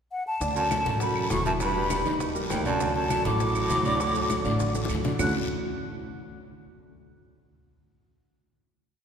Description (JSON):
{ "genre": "Afro-Cuban jazz", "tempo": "201 BPM", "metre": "4/4", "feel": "straight", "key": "D major", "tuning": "A4 = 436 Hz", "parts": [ { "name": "breathy mellow silver concert flute", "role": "melody", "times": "0.1-5.3 s", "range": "F#5 to F#6", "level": "-29 LUFS", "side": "left 2 dB", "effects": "none" }, { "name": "warm grand piano", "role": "accompaniment", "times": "0.4-5.3 s", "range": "D3 to E5", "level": "-31 LUFS", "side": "right 2 dB", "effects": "none" }, { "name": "upright bass", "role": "bass", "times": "0.4-5.3 s", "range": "E1 to Eb2", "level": "-32 LUFS", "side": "equal", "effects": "none" }, { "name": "bongos", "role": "percussion", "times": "0.4-5.3 s", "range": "none", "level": "-36 LUFS", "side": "left 3 dB", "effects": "none" }, { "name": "congas", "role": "percussion", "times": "0.4-5.3 s", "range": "none", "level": "-36 LUFS", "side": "left 2 dB", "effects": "none" }, { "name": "guiro", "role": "percussion", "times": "0.4-5.3 s", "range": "none", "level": "-41 LUFS", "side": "left 5 dB", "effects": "none" }, { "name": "maracas", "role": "percussion", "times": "0.4-5.3 s", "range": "none", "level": "-42 LUFS", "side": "right 6 dB", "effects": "none" }, { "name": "bright baritone saxophone", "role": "second line", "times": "0.6-5.3 s", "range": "D2 to A2", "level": "-32 LUFS", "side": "right 4 dB", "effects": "none" }, { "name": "claves", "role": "percussion", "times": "0.7-5.3 s", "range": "none", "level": "-42 LUFS", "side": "right 4 dB", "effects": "none" } ], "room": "wet church reverb, RT60 3.1 s", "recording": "recorded in a church or concert hall", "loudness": "-24 LUFS", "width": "side -7 dB against mid", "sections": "0.0-0.4 pickup bar; 0.4-5.2 A section; 5.2-6.4 final chord", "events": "drum fill 4.7-5.2", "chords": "0.4 Dadd9; 1.6 Em; 2.2 Eb; 2.8 D; 5.2 Dmaj9", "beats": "0.11 | 0.41 0.71 1.01 1.31 | 1.61 1.91 2.21 2.50 | 2.80 3.10 3.40 3.70 | 4.00 4.30 4.60 4.90 | 5.20" }